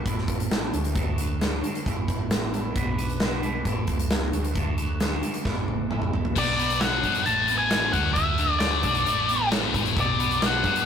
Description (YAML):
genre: quiet-loud alternative rock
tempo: 133 BPM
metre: 4/4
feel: straight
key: unclear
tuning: A4 = 442 Hz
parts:
  - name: electric guitar at the edge of break-up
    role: arpeggios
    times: 0.0-10.9 s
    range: B2 to B4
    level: -33 LUFS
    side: right 4 dB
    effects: phaser
  - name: hollow-body short-scale fingered electric bass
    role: bass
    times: 0.1-10.8 s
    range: A1 to F#2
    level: -30 LUFS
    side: equal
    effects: none
  - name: big rock drum kit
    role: drums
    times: 0.1-10.9 s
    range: crash cymbal, hi-hat, kick drum, snare drum, toms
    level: -26 LUFS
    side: equal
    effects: none
  - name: octave-fuzz lead guitar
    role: melody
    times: 6.4-10.9 s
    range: D5 to A5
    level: -24 LUFS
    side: left 1 dB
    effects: distortion, digital delay
  - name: scooped high-gain guitar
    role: riff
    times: 6.4-10.9 s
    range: A2 to D4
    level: -26 LUFS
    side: left 7 dB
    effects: distortion
room: light reverb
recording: rough rehearsal-room recording, tube saturation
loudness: -22 LUFS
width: side -8 dB against mid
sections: 0.0-6.4 A section; 6.4-10.9 B section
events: drum fill 5.5-6.4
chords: 0.1 Asus2; 0.7 D; 1.9 Asus2; 2.8 Bm; 3.7 Asus2; 4.3 D; 5.5 Asus2; 6.4 Bm; 7.3 Asus2; 7.9 D; 9.1 Asus2; 10.0 Bm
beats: 0.06 0.51 | 0.96 1.41 1.86 2.31 | 2.76 3.21 3.66 4.11 | 4.56 5.01 5.46 5.91 | 6.36 6.81 7.26 7.71 | 8.17 8.62 9.07 9.52 | 9.97 10.43